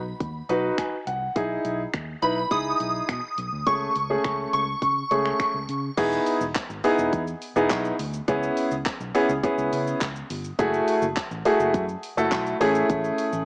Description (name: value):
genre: dance-pop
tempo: 104 BPM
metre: 4/4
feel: straight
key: E major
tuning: A4 = 440 Hz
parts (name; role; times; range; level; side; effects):
- shimmering bell with halo; melody; 0.0-5.6 s; B5 to D#6; -25 LUFS; equal; ensemble chorus, phaser, tape echo
- vintage muted fingered electric bass; bass; 0.0-13.4 s; E1 to C#3; -33 LUFS; equal; sidechain pumping
- pop drum kit; drums; 0.2-13.4 s; crash cymbal, finger snaps, handclaps, hi-hat, kick drum, shaker; -30 LUFS; equal; cassette tape
- clear baby grand piano; accompaniment; 0.5-13.4 s; A3 to G#5; -23 LUFS; equal; sidechain pumping, cassette tape
room: moderate spring reverb, RT60 2.0 s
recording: home recording on cassette, small speaker sound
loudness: -22 LUFS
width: side -31 dB against mid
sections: 0.0-6.0 A section; 6.0-13.4 B section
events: grand piano fill 0.5-1.4; drop 6.0-13.4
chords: 0.0 B; 1.4 Emaj7/B; 3.7 Amaj7/C#; 6.0 Emaj7; 8.3 C#m7; 10.6 F#m9; 12.6 Amaj7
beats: 0.20 0.78 | 1.36 1.94 2.51 3.09 | 3.67 4.24 4.82 5.40 | 5.97 6.55 7.13 7.71 | 8.28 8.86 9.44 10.01 | 10.59 11.17 11.74 12.32 | 12.90